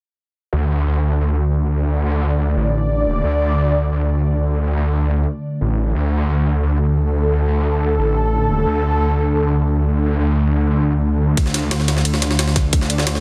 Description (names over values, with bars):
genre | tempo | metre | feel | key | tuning
dark technical drum and bass | 177 BPM | 4/4 | straight | unclear | A4 = 440 Hz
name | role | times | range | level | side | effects
sweeping resonant pad | sustained chords | 0.5-13.2 s | D3 to D5 | -23 LUFS | equal | chorus, sidechain pumping
snarling distorted saw bass | bass | 0.5-13.2 s | Eb1 to D2 | -20 LUFS | equal | distortion, overdrive
electronic hi-hat | drums | 11.4-13.1 s | none | -25 LUFS | equal | none
electronic kick drum | drums | 11.4-12.8 s | none | -20 LUFS | equal | none
jungle sampler-style drum kit | drums | 11.4-13.2 s | ride cymbal, snare drum | -25 LUFS | equal | overdrive, high-pass filter on cymbals, high-pass filter on snare
room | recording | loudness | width
light reverb, digital ambience | dense, heavily limited modern master | -18 LUFS | mono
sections
0.5-13.2 A section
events
filter sweep on analog synth pad 0.5-13.2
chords
0.5 D5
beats
| 0.53 0.86 1.20 1.54 | 1.88 2.22 2.56 2.90 | 3.24 3.58 3.92 4.25 | 4.59 4.93 5.27 5.61 | 5.95 6.29 6.63 6.97 | 7.31 7.64 7.98 8.32 | 8.66 9.00 9.34 9.68 | 10.02 10.36 10.70 11.03 | 11.37 11.71 12.05 12.39 | 12.73 13.07